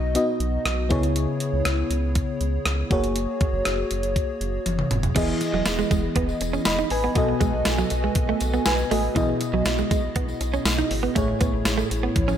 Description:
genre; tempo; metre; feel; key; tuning
1980s-style pop; 120 BPM; 4/4; straight; unclear; A4 = 440 Hz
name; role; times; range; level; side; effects
FM electric piano with soft pad layer; accompaniment; 0.0-12.4 s; A2 to B5; -25 LUFS; left 1 dB; chorus
rubbery square bass; bass; 0.0-12.3 s; E1 to C#2; -27 LUFS; equal; none
clean 12-bit digital drum machine; drums; 0.2-12.4 s; crash cymbal, hi-hat, kick drum, rim click, snare drum, toms; -25 LUFS; equal; none
direct-recorded clean electric guitar; riff; 5.2-12.4 s; E3 to D#4; -28 LUFS; right 7 dB; wide subtle chorus, ping-pong delay
tambourine; percussion; 5.2-12.4 s; none; -39 LUFS; left 7 dB; none
room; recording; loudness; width
light reverb, digital ambience; none; -21 LUFS; side -9 dB against mid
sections
0.0-5.2 A section; 5.2-12.4 B section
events
drum fill 4.7-5.2, 12.2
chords
0.0 B; 0.9 C#m7; 2.9 F#add9; 5.2 Emaj7; 7.2 B7; 9.2 Emaj7/B; 11.2 Amaj7

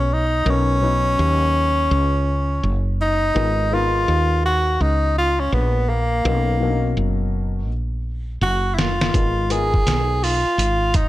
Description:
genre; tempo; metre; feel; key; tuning
hip hop, jazz-hop; 83 BPM; 4/4; swing 61% on 16ths; unclear; A4 = 440 Hz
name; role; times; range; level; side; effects
clear tenor saxophone; melody; 0.0-11.1 s; A#3 to G#4; -20 LUFS; equal; slapback echo
woody fretless electric bass; bass; 0.0-11.1 s; F#1 to D#2; -20 LUFS; equal; none
dark upright piano; accompaniment; 0.4-10.6 s; B2 to E#5; -27 LUFS; left 6 dB; none
dusty soul sampler-style drum kit; drums; 8.8-11.1 s; hi-hat, kick drum, snare drum; -20 LUFS; equal; none
room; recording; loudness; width
digital ambience; none; -17 LUFS; side -16 dB against mid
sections
0.0-11.1 A section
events
drum fill 7.7-9.1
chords
0.5 Badd9; 3.4 G#m69; 6.3 Bmaj9; 9.1 G#m69

